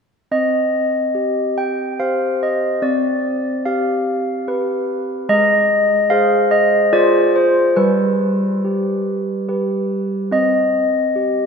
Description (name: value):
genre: classical, tune for handbells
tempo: 72 BPM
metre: 3/4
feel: straight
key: C minor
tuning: A4 = 440 Hz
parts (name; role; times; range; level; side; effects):
- handbells; solo; 0.3-11.5 s; G3 to G5; -15 LUFS; equal; none
room: wet church reverb, RT60 3.2 s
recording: dark, warm production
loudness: -15 LUFS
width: side -6 dB against mid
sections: 0.3-11.5 A section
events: none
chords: 0.3 Cm; 2.8 G7/C; 5.3 Ab; 6.9 Dm7b5/F; 7.8 G; 10.3 Cm